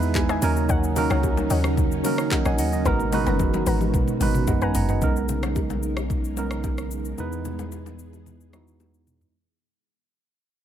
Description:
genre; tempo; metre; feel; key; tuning
amapiano; 111 BPM; 4/4; straight; B major; A4 = 440 Hz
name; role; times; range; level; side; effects
tine electric piano; accompaniment; 0.0-9.4 s; F#3 to A#5; -26 LUFS; right 6 dB; overdrive
string machine, cellos; sustained chords; 0.0-9.3 s; B2 to A#4; -30 LUFS; left 1 dB; ensemble chorus, sidechain pumping
deep log drum bass; bass; 0.0-5.0 s; F#1 to E2; -25 LUFS; left 1 dB; none
afro-pop drum kit; drums; 0.0-9.3 s; handclaps, hi-hat, kick drum, rim click, shaker, toms; -26 LUFS; left 1 dB; none
bongos and congas; percussion; 0.2-8.9 s; none; -34 LUFS; left 10 dB; none
soft round pluck; stabs; 0.3-4.7 s; B4 to A#5; -32 LUFS; left 6 dB; chorus, ping-pong delay
saturated sub bass; bass; 5.0-9.3 s; B1 to E2; -31 LUFS; left 1 dB; none
room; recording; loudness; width
digital ambience; none; -21 LUFS; side -10 dB against mid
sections
0.0-5.0 A section; 5.0-9.3 B section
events
drop 0.0-5.0; tine electric piano fill 0.0-0.7; drum fill 2.9-5.0, 8.8-9.3; fade-out 5.0-9.3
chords
0.4 D#m7; 2.9 G#m9; 5.0 Bmaj13; 7.2 Emaj7

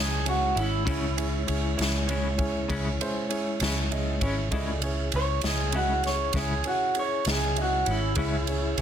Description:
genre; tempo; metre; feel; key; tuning
slow blues; 66 BPM (dotted quarters); 12/8; straight; C# minor; A4 = 441 Hz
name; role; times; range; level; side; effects
electric guitar through a small old amp; melody; 0.0-8.8 s; E4 to C#5; -28 LUFS; right 1 dB; none
clean electric guitar; accompaniment; 0.0-8.4 s; C#3 to E4; -34 LUFS; left 4 dB; tremolo
clear upright piano; accompaniment; 0.0-8.8 s; C#4 to E5; -35 LUFS; right 3 dB; none
mellow tonewheel organ; sustained chords; 0.0-8.8 s; G#3 to E5; -34 LUFS; left 1 dB; slow rotary speaker
vintage muted fingered electric bass; bass; 0.0-8.8 s; G#1 to C#2; -29 LUFS; equal; none
swinging big-band drum kit; drums; 0.3-8.8 s; kick drum, ride cymbal, snare drum; -31 LUFS; right 1 dB; none
room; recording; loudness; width
moderate small room reverb, RT60 0.5 s; dense, heavily limited modern master; -24 LUFS; side -9 dB against mid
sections
0.0-8.8 A section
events
clean electric guitar solo 0.0-8.8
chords
0.0 C#m

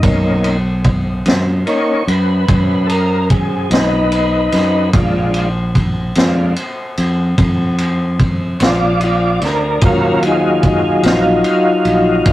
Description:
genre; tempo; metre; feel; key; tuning
slow blues; 49 BPM (dotted quarters); 12/8; straight; unclear; A4 = 440 Hz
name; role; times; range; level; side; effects
tonewheel organ; sustained chords; 0.0-12.3 s; Gb3 to D5; -14 LUFS; equal; slow rotary speaker, chorus vibrato
fretless electric bass; bass; 0.0-12.3 s; Bb1 to F#2; -17 LUFS; equal; none
vintage drum kit; drums; 0.0-12.3 s; kick drum, ride cymbal, snare drum; -17 LUFS; equal; none
room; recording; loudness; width
light reverb; rough rehearsal-room recording; -12 LUFS; side -15 dB against mid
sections
0.0-12.3 A section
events
tonewheel organ solo 0.0-12.3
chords
0.0 Bmaj7; 4.9 Bb7; 9.8 Ebm7

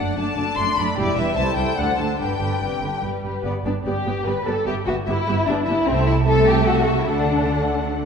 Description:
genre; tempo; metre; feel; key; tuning
quick classical-period movement for string orchestra; 148 BPM; 3/4; straight; G major; A4 = 439 Hz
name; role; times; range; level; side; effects
warm symphonic violin section; melody; 0.0-8.1 s; D5 to C6; -27 LUFS; left 6 dB; none
dark symphonic violin section; second line; 0.0-7.9 s; B3 to D5; -23 LUFS; left 2 dB; none
warm studio viola section; accompaniment; 0.0-8.1 s; C3 to A4; -26 LUFS; right 1 dB; none
rich symphonic double bass section; bass; 0.0-8.1 s; E1 to D2; -27 LUFS; right 3 dB; none
warm symphonic cello section; bass; 0.0-8.1 s; C2 to D3; -26 LUFS; right 3 dB; none
room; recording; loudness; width
wet scoring stage reverb, RT60 1.9 s; recorded in a church or concert hall; -18 LUFS; side -6 dB against mid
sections
0.0-3.5 A section; 3.5-8.1 A section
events
none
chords
0.0 D/F#; 1.0 Em; 1.4 Am7/C; 1.8 D7; 2.2 G; 5.9 Am/C; 7.1 D

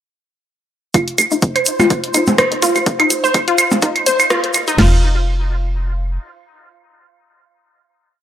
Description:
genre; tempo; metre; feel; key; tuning
minimal techno; 125 BPM; 4/4; swing 55% on 16ths; unclear; A4 = 439 Hz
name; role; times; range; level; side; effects
resonant blip pluck; riff; 0.9-5.0 s; Eb4 to C5; -18 LUFS; left 1 dB; chorus, sidechain pumping, dub echo
punchy analog drum machine; drums; 0.9-4.9 s; crash cymbal, kick drum, snare drum, toms; -18 LUFS; equal; high-pass filter on kick, high-pass filter on snare, high-pass filter on toms, high-pass filter on cymbals
punchy analog drum machine; drums; 0.9-4.8 s; hi-hat, rim click; -18 LUFS; equal; dub echo
claves and percussion blips; percussion; 0.9-4.7 s; none; -16 LUFS; right 2 dB; dub echo
egg shaker; percussion; 0.9-4.8 s; none; -22 LUFS; right 2 dB; none
bubbling stepped-filter texture; texture; 1.4-4.8 s; C5; -26 LUFS; right 3 dB; chorus, built-in reverb, sidechain pumping
hollow knocking FM bass; bass; 1.2-6.2 s; F1 to C2; -18 LUFS; equal; sidechain pumping, high-pass filter
room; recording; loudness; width
moderate plate reverb, RT60 1.6 s; echo-heavy mix, high-pass filter; -13 LUFS; side -11 dB against mid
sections
0.9-4.8 build; 4.8-8.2 final chord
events
build-up 0.9-4.8; filter sweep on synth arpeggio sound 0.9-4.8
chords
0.9 F5; 4.8 N.C.

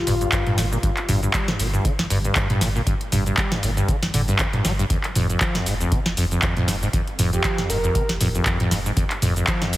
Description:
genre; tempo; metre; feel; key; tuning
acid house; 118 BPM; 4/4; swing 56% on 16ths; G phrygian; A4 = 439 Hz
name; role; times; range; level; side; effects
breathy flute-like synth lead; melody; 0.0-0.7, 7.3-8.1 s; F4 to Bb4; -29 LUFS; left 1 dB; wide subtle chorus, tape echo
warm sub bass; bass; 0.0-9.8 s; F1 to G1; -26 LUFS; equal; tube saturation, sidechain pumping
deep acid bass; riff; 0.1-9.8 s; F2 to G3; -24 LUFS; equal; tube saturation, wide subtle chorus, vintage 12-bit sampler grit, sidechain pumping, digital delay
booming analog drum machine; drums; 0.1-9.8 s; handclaps, hi-hat, shaker, snare drum, toms; -23 LUFS; equal; none
electronic kick drum; drums; 0.3-9.6 s; none; -24 LUFS; equal; none
room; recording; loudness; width
light reverb; heavily compressed radio sound, multiband compression; -19 LUFS; side -16 dB against mid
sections
0.0-9.8 A section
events
none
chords
none

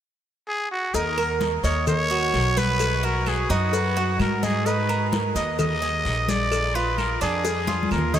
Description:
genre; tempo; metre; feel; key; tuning
latin, Cuban son and guajira; 129 BPM; 4/4; straight; Eb minor; A4 = 442 Hz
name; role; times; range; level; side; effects
trumpet with straight mute; melody; 0.5-8.2 s; Gb4 to Eb5; -25 LUFS; equal; analog delay
Cuban tres; arpeggios; 0.9-8.2 s; D4 to Eb5; -27 LUFS; right 4 dB; analog delay
upright bass; bass; 0.9-8.2 s; Bb1 to Ab2; -26 LUFS; equal; none
congas; percussion; 0.9-8.2 s; none; -30 LUFS; left 2 dB; none
cowbell and bongos; percussion; 0.9-8.2 s; none; -33 LUFS; left 7 dB; none
guiro; percussion; 0.9-8.2 s; none; -39 LUFS; left 4 dB; none
maracas; percussion; 0.9-8.2 s; none; -40 LUFS; left 7 dB; none
claves; percussion; 1.2-8.1 s; none; -42 LUFS; right 8 dB; none
room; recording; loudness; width
moderate huge ambient reverb, RT60 7.9 s; dreamy mix soaked in reverb; -21 LUFS; side -10 dB against mid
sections
0.9-8.2 A section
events
drum fill 7.7-8.2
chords
0.0 N.C.; 0.9 Ebm7; 2.8 B; 4.7 Abmadd9; 6.5 Bb7

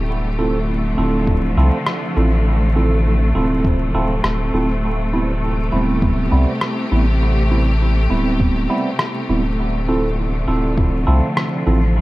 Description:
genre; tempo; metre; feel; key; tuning
ambient dub; 101 BPM; 4/4; straight; D dorian; A4 = 440 Hz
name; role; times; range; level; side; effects
warm studio string section; sustained chords; 0.0-12.0 s; C3 to G4; -22 LUFS; left 1 dB; vintage 12-bit sampler grit
soft dub sub bass; bass; 0.0-12.0 s; D1 to C2; -18 LUFS; equal; none
tine electric piano; stabs; 0.4-11.8 s; G3 to A4; -22 LUFS; right 2 dB; phaser, dub echo
electronic kick drum; drums; 1.3-10.9 s; none; -18 LUFS; equal; studio reverb
electronic rim click; drums; 1.9-11.5 s; none; -23 LUFS; equal; studio reverb
room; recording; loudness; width
light reverb; echo-heavy mix, vinyl crackle; -15 LUFS; side -18 dB against mid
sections
0.0-12.0 A section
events
none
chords
0.1 Dm7; 4.8 Am7/D; 9.6 Dm7

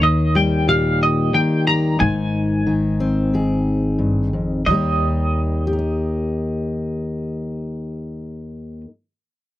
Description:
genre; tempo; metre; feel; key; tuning
indie folk with a building arrangement; 90 BPM; 4/4; straight; Eb major; A4 = 442 Hz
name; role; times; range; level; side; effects
twelve-string electric guitar; melody; 0.0-8.8 s; Eb5 to Bb5; -21 LUFS; right 1 dB; tremolo
fingerpicked steel-string acoustic guitar; accompaniment; 0.0-8.9 s; Eb2 to Eb5; -19 LUFS; left 2 dB; none
upright bass; bass; 0.0-8.8 s; Ab1 to Eb2; -26 LUFS; right 1 dB; none
room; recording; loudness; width
little or no reverb; dry, close 1970s-style studio recording; -17 LUFS; side -14 dB against mid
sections
0.0-4.7 A section; 4.7-7.3 B section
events
none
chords
0.0 Eb; 2.0 Ab; 4.7 Eb

